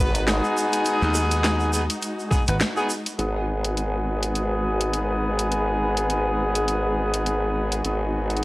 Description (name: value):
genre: glitch hop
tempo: 103 BPM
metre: 4/4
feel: swing 56% on 16ths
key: G# minor pentatonic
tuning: A4 = 443 Hz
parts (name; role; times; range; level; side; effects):
- warm symphonic string section; sustained chords; 0.0-8.4 s; G#3 to B4; -30 LUFS; left 1 dB; sidechain pumping, low-pass filter
- clear horn section; stabs; 0.0-8.4 s; B3 to B4; -24 LUFS; equal; sidechain pumping, low-pass filter, analog delay
- formant-sweep wobble bass; bass; 0.0-8.4 s; G#1; -26 LUFS; equal; chorus
- drum and bass drum kit; drums; 0.1-8.4 s; hi-hat, rim click, snare drum; -26 LUFS; equal; overdrive
- tube shaker; percussion; 0.1-3.2 s; none; -34 LUFS; right 2 dB; none
- dry thumbed slap bass; bass; 1.0-2.6 s; G#1 to D#2; -23 LUFS; equal; none
- electronic kick drum; drums; 2.3-2.4 s; none; -21 LUFS; equal; overdrive
room: light reverb, digital ambience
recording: dry, gritty hardware recording, transformer saturation, cassette tape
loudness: -21 LUFS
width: side -19 dB against mid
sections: 0.0-3.2 A section; 3.2-8.4 B section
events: band accent 2.6; filter sweep on string section 3.2-8.4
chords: 0.0 G#m7